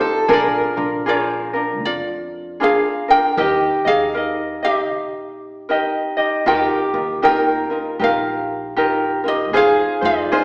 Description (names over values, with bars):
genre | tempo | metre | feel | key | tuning
Hawaiian | 78 BPM | 4/4 | swing 62% on 8ths | Eb major | A4 = 440 Hz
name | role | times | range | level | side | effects
fingerpicked old ladder-braced acoustic guitar | second line | 0.0-10.4 s | G4 to C5 | -21 LUFS | equal | none
ukulele | accompaniment | 0.0-10.4 s | D4 to Eb5 | -19 LUFS | equal | none
ukulele | melody | 0.3-10.4 s | F4 to G5 | -19 LUFS | equal | none
upright bass | bass | 0.3-10.4 s | Bb1 to F2 | -34 LUFS | equal | none
room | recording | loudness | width
wet recital hall reverb, RT60 1.4 s | recorded in a church or concert hall, small speaker sound | -15 LUFS | side -30 dB against mid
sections
0.0-6.5 A section; 6.5-10.4 B section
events
none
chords
0.3 Bb7; 3.4 Eb; 6.5 Ebadd9; 9.6 Fm7